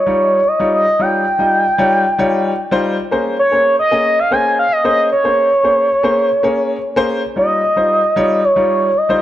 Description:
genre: funk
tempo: 113 BPM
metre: 4/4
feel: straight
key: Bb dorian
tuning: A4 = 441 Hz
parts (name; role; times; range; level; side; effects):
- expressive synth lead; melody; 0.0-9.2 s; Db5 to Ab5; -13 LUFS; equal; chorus
- warm concert grand piano; accompaniment; 0.1-9.2 s; G3 to Eb5; -18 LUFS; left 1 dB; none
room: moderate plate reverb, RT60 2.6 s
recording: dark, warm production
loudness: -12 LUFS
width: side -12 dB against mid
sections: 0.0-9.2 A section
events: none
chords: 0.0 Eb9; 3.1 Bbm9; 7.4 Eb9

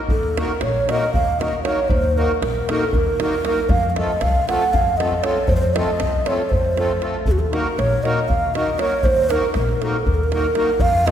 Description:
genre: balkan folk, Balkan wedding band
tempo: 235 BPM (eighths)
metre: 7/8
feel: straight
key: Eb dorian sharp4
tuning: A4 = 439 Hz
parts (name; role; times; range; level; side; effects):
- breathy mellow low ney; melody; 0.1-11.1 s; Gb4 to Gb5; -20 LUFS; right 1 dB; none
- upright bass; bass; 0.1-11.1 s; Bb1 to F2; -23 LUFS; left 1 dB; none
- davul; percussion; 0.1-11.1 s; none; -24 LUFS; equal; none
- accordion; accompaniment; 0.4-11.1 s; A3 to Bb4; -24 LUFS; equal; light tremolo tuning
room: wet concert hall reverb, RT60 2.2 s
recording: recorded in a church or concert hall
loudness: -17 LUFS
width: side -9 dB against mid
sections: 0.1-11.1 A section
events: none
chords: 0.1 Ebm; 3.7 F; 7.3 Ebm

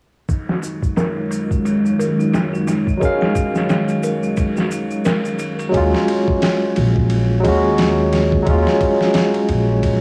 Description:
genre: trip hop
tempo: 88 BPM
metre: 4/4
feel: swing 58% on 16ths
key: Eb minor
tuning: A4 = 440 Hz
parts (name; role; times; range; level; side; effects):
- string machine, cellos; sustained chords; 0.3-5.7 s; Gb3 to F5; -24 LUFS; equal; phaser, ensemble chorus
- music box; arpeggios; 0.3-5.7 s; Eb4 to Bb4; -30 LUFS; equal; vintage 12-bit sampler grit, low-pass filter, tape echo
- boom bap sampler-style drum kit; drums; 0.3-10.0 s; kick drum, ride cymbal, snare drum; -24 LUFS; equal; low-pass filter on kick, studio reverb, low-pass filter on cymbals, low-pass filter on snare
- tube shaker; percussion; 0.3-5.7 s; none; -42 LUFS; equal; none
- barky tine electric piano; accompaniment; 3.0-10.0 s; Gb3 to F5; -20 LUFS; equal; harmonic tremolo, tape echo
- upright bass; bass; 5.7-10.0 s; Bb1 to Eb2; -20 LUFS; equal; tube saturation
room: studio reverb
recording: dry, gritty hardware recording, vinyl crackle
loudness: -18 LUFS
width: mono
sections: 0.3-5.7 A section; 5.7-10.0 B section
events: filter sweep on music box 0.3-5.7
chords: 0.3 Ebm11

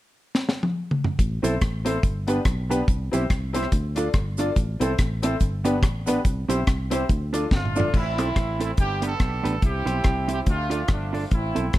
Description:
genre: ska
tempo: 142 BPM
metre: 4/4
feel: swing 58% on 8ths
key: A minor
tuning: A4 = 441 Hz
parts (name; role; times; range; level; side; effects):
- deep reggae drum kit; drums; 0.3-11.8 s; crash cymbal, hi-hat, kick drum, rim click, snare drum, toms; -23 LUFS; equal; none
- fingered electric bass; bass; 1.2-11.8 s; G1 to D2; -28 LUFS; equal; none
- cabasa; percussion; 1.2-7.8 s; none; -41 LUFS; right 7 dB; dub echo
- hollow-body jazz guitar; accompaniment; 1.4-11.7 s; B3 to D5; -28 LUFS; right 3 dB; none
- warm upright piano; stabs; 1.4-7.9 s; B3 to D5; -28 LUFS; left 3 dB; none
- clear horn section; melody; 7.5-11.8 s; F3 to A4; -28 LUFS; right 2 dB; dub echo
room: light reverb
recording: dark, warm production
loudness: -21 LUFS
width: side -15 dB against mid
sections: 0.0-1.2 A section; 1.2-7.9 B section; 7.9-11.8 C section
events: drum fill 0.3-1.2, 7.5-7.9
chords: 0.0 N.C.; 1.2 Am; 2.0 G; 2.9 C; 3.7 Dm; 4.6 Am; 5.4 G; 6.3 C; 7.1 Dm; 7.9 Am; 8.8 G; 9.6 C; 10.5 Dm

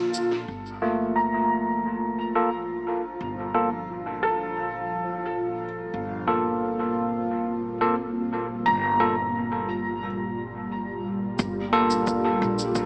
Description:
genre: ambient dub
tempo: 88 BPM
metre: 4/4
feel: straight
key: G minor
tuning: A4 = 443 Hz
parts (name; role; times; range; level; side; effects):
- warm analog pad; sustained chords; 0.0-12.9 s; Bb2 to F4; -34 LUFS; equal; chorus
- felt-muted upright piano; arpeggios; 0.0-11.4 s; A4 to Bb5; -32 LUFS; equal; low-pass filter, dub echo
- cabasa; drums; 0.1-0.3, 11.4-12.9 s; none; -40 LUFS; equal; overdrive, low-pass filter on perc, low-pass filter on snare, low-pass filter on room, dub echo
- upright bass; bass; 0.5-12.9 s; G1 to Bb1; -39 LUFS; equal; none
- bubbling stepped-filter texture; texture; 1.1-11.4 s; F3 to F4; -37 LUFS; equal; chorus, built-in reverb
- bell-like tine electric piano; stabs; 0.8-12.9 s; A3 to A4; -28 LUFS; equal; vintage 12-bit sampler grit, low-pass filter, dub echo
- electronic kick drum; drums; 11.4-12.9 s; none; -33 LUFS; equal; overdrive
room: moderate echo chamber reverb, RT60 2.3 s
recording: echo-heavy mix, small speaker sound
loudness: -26 LUFS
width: mono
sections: 0.5-11.4 A section; 11.4-12.9 B section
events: break 0.0-0.5; filter sweep on drum 0.5-11.4; filter sweep on analog synth pad 0.5-11.4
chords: 0.5 Gm9

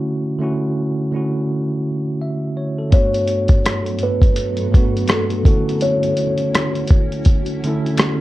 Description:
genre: lo-fi hip hop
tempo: 83 BPM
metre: 4/4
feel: swing 58% on 16ths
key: G lydian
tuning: A4 = 440 Hz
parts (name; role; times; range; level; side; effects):
- bell-like tine electric piano; accompaniment; 0.0-8.2 s; G2 to E5; -20 LUFS; right 1 dB; medium stereo tremolo, cassette tape, low-pass filter
- kalimba; melody; 2.9-6.9 s; A4 to C#5; -22 LUFS; left 1 dB; low-pass filter
- granular cloud pad; sustained chords; 3.8-8.2 s; D2 to A4; -27 LUFS; equal; built-in reverb, low-pass filter
- lo-fi sampler-style drum kit; drums; 2.9-8.2 s; hi-hat, kick drum, rim click; -14 LUFS; equal; none
- finger snaps; percussion; 3.7-8.2 s; none; -29 LUFS; left 5 dB; none
room: light reverb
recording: dark, warm production, lossy compression artefacts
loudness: -15 LUFS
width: side -16 dB against mid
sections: 0.0-2.9 A section; 2.9-8.2 B section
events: none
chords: 0.0 Dmaj9; 2.9 Gmaj9; 5.5 Dmaj9

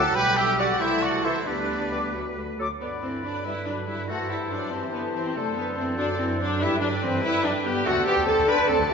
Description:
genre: quick classical-period movement for symphony orchestra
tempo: 94 BPM (dotted quarters)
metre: 6/8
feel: rubato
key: G major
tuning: A4 = 440 Hz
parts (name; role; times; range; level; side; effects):
- warm symphonic violin section; melody; 0.0-8.8 s; F#4 to B5; -35 LUFS; left 4 dB; none
- bright clarinet; second line; 0.0-8.9 s; G4 to D5; -34 LUFS; left 1 dB; none
- bright flute section; second line; 0.0-8.9 s; G5 to D6; -33 LUFS; left 4 dB; none
- warm oboe; second line; 0.0-8.9 s; B4 to G5; -32 LUFS; right 1 dB; none
- warm symphonic violin section; second line; 0.0-8.9 s; D4 to B5; -34 LUFS; left 3 dB; none
- dark bassoon; accompaniment; 0.0-8.9 s; D3 to G3; -34 LUFS; right 1 dB; none
- rich chamber viola section; accompaniment; 0.0-8.9 s; D3 to B4; -28 LUFS; equal; none
- clear trumpet; stabs; 0.0-2.1 s; D4 to B4; -27 LUFS; right 3 dB; none
- dark chamber double bass section; bass; 0.0-8.9 s; B1 to G2; -34 LUFS; right 4 dB; none
- warm chamber cello section; bass; 0.0-8.9 s; A3 to B4; -33 LUFS; right 2 dB; none
- mellow French horn section; sustained chords; 0.1-8.9 s; C3 to G4; -32 LUFS; left 3 dB; none
room: wet concert hall reverb, RT60 1.9 s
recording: nothing above 7.5 kHz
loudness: -22 LUFS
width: side -6 dB against mid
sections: 0.0-2.8 A section; 2.8-8.9 B section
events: none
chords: 0.2 G/B; 0.8 Am/C; 1.5 G/D; 2.1 D; 2.8 G; 4.1 Am7/G; 5.4 D7/F#; 6.6 G; 7.9 D7

